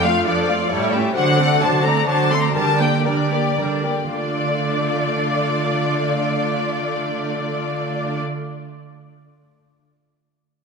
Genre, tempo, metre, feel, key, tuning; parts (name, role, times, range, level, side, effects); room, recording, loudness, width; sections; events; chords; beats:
quick classical-period movement for string orchestra; 108-134 BPM; 3/4; straight; D minor; A4 = 440 Hz
clear symphonic violin section; melody; 0.0-8.2 s; D5 to C6; -23 LUFS; left 4 dB
rich chamber violin section; second line; 0.0-8.2 s; F4 to F5; -24 LUFS; left 5 dB
rich chamber viola section; accompaniment; 0.0-8.2 s; F3 to F4; -24 LUFS; right 4 dB
warm chamber cello section; bass; 0.0-8.2 s; F2 to D3; -24 LUFS; right 4 dB
wet concert hall reverb, RT60 2.4 s; -17 LUFS; side -5 dB against mid
0.0-4.1 A section; 4.1-7.4 B section
slowing down 0.5-4.1
0.0 Dm/F; 0.7 A7; 1.2 D7; 2.6 Gm/D; 4.1 Dm
0.26 0.71 | 1.16 1.61 2.08 | 2.56 3.05 3.58 | 4.13 4.68 5.23 | 5.78 6.33 6.88